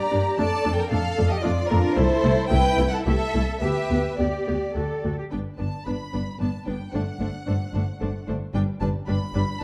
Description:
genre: quick classical-period movement for string orchestra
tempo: 112 BPM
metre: 3/4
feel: rubato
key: G major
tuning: A4 = 440 Hz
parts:
  - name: rich studio violin section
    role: melody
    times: 0.0-9.6 s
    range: Bb4 to B5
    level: -31 LUFS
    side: equal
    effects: none
  - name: rich studio violin section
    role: second line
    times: 0.0-9.6 s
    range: D4 to D5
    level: -33 LUFS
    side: equal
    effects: none
  - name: rich studio cello section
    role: bass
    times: 0.0-9.4 s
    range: G2 to B4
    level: -33 LUFS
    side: equal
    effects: none
  - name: rich studio viola section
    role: accompaniment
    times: 0.1-9.6 s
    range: G3 to G4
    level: -32 LUFS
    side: equal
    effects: none
  - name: rich studio double bass section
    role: bass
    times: 0.1-9.6 s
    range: G1 to G2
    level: -28 LUFS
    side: equal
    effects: none
room: moderate recital hall reverb, RT60 1.4 s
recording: dark, warm production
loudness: -24 LUFS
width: mono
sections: 0.0-5.3 A section; 5.3-9.6 B section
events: none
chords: 0.4 Dm/F; 2.0 Am/C; 3.6 G/D; 4.8 D; 5.3 G; 6.9 D7/G; 8.5 G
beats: | 0.38 0.91 1.44 | 1.97 2.51 3.05 | 3.61 4.19 4.75 | 5.32 5.86 6.40 | 6.93 7.47 8.01 | 8.54 9.08 9.62

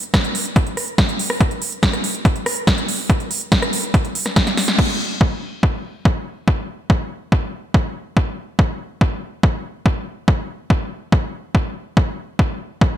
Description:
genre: trance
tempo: 142 BPM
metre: 4/4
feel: straight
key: none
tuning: none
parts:
  - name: big-room dance drum kit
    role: drums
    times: 0.0-4.9 s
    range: crash cymbal, hi-hat, rim click, snare drum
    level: -20 LUFS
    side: equal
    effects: overdrive
  - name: electronic kick drum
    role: drums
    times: 0.1-12.9 s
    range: none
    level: -16 LUFS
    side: equal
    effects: overdrive
room: light reverb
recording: none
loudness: -17 LUFS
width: side -11 dB against mid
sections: 0.0-4.8 A section; 4.8-13.0 B section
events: drum fill 4.5-4.8; band accent 4.7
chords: none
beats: 0.14 0.56 0.98 | 1.41 1.83 2.25 2.67 | 3.10 3.52 3.94 4.36 | 4.79 5.21 5.63 6.05 | 6.48 6.90 7.32 7.74 | 8.17 8.59 9.01 9.43 | 9.86 10.28 10.70 11.12 | 11.55 11.97 12.39 12.81

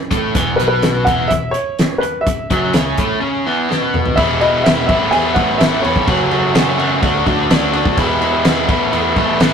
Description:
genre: indie rock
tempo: 126 BPM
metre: 4/4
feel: straight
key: E major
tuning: A4 = 438 Hz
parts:
  - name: overdriven electric guitar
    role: riff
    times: 0.1-9.5 s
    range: E2 to F#4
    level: -16 LUFS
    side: equal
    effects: none
  - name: fingered electric bass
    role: bass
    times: 0.1-9.5 s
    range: E1 to E2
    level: -24 LUFS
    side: equal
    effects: none
  - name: loose indie drum kit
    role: drums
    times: 0.1-9.5 s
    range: crash cymbal, hi-hat, kick drum, snare drum, toms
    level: -17 LUFS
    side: equal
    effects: none
  - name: warm upright piano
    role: melody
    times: 0.6-6.7 s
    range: B4 to G#5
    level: -18 LUFS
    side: equal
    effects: none
room: moderate small room reverb, RT60 0.5 s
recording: rough rehearsal-room recording, tube saturation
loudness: -13 LUFS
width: side -7 dB against mid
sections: 0.0-4.2 A section; 4.2-9.5 B section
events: drum fill 3.7-4.2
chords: 0.0 E5; 4.2 E; 4.9 Asus2; 6.1 F#m; 7.0 D; 8.0 E; 8.7 Asus2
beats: | 0.35 0.83 1.31 1.79 | 2.27 2.75 3.22 3.70 | 4.18 4.65 5.13 5.60 | 6.08 6.55 7.03 7.50 | 7.98 8.45 8.93 9.40

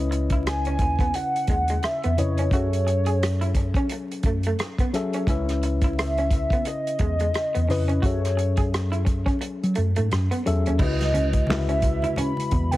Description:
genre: R&B, neo-soul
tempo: 87 BPM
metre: 4/4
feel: swing 59% on 16ths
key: unclear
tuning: A4 = 442 Hz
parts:
  - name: reed electric piano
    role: accompaniment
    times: 0.0-12.8 s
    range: C#3 to E5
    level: -29 LUFS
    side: left 3 dB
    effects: none
  - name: mellow tine electric piano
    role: bass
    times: 0.0-12.8 s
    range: C#2 to F#3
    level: -24 LUFS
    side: equal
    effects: medium stereo tremolo
  - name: electric guitar through a small old amp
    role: second line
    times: 0.1-12.8 s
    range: G#3 to G#4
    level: -31 LUFS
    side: right 2 dB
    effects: none
  - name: warm soul drum kit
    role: drums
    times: 0.1-12.8 s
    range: crash cymbal, handclaps, hi-hat, kick drum, rim click, snare drum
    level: -26 LUFS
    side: equal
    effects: none
  - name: hollow square lead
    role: melody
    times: 0.5-12.8 s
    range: B4 to B5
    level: -27 LUFS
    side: equal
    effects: chorus
  - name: congas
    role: percussion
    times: 11.0-12.8 s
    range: none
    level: -32 LUFS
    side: right 1 dB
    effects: none
room: little or no reverb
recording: heavily compressed radio sound, vinyl crackle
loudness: -21 LUFS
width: side -16 dB against mid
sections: 0.0-10.8 A section; 10.8-12.8 B section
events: kick muted 9.4-10.8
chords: 0.0 C#m9; 2.5 F#m9; 5.3 C#m9; 8.0 F#m9; 10.8 C#m11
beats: 0.45 1.14 1.82 | 2.51 3.20 3.89 4.58 | 5.27 5.96 6.65 7.34 | 8.03 8.72 9.41 10.10 | 10.79 11.48 12.17

